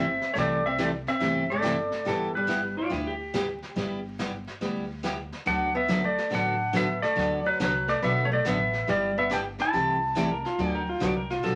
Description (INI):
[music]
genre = country, western swing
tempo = 141 BPM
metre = 4/4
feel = swing 65% on 8ths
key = G major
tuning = A4 = 445 Hz
[part]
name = clean lap steel guitar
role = melody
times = 0.0-2.7, 5.5-11.3 s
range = A4 to A5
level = -29 LUFS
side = equal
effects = none
[part]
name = archtop guitar, miked and amplified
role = second line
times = 0.0-2.8, 5.5-11.3 s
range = E3 to E4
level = -34 LUFS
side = equal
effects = none
[part]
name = picked steel-string acoustic guitar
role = accompaniment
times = 0.0-11.6 s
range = C3 to A4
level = -32 LUFS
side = equal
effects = none
[part]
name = upright bass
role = bass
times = 0.0-11.6 s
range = G1 to D2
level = -38 LUFS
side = equal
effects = none
[part]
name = vintage brush drum kit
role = drums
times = 0.2-11.6 s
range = brushed snare drum, hi-hat, snare drum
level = -41 LUFS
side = equal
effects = none
[part]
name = clean lap steel guitar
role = second line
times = 2.8-4.3, 10.2-11.6 s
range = D4 to D5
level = -34 LUFS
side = equal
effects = none
[sound]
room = wet studio reverb, RT60 0.5 s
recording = vinyl crackle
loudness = -27 LUFS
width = mono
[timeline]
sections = 0.0-11.6 A section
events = none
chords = 0.0 C6; 2.1 G6; 5.5 D6; 8.9 G6; 9.7 C6; 10.6 D6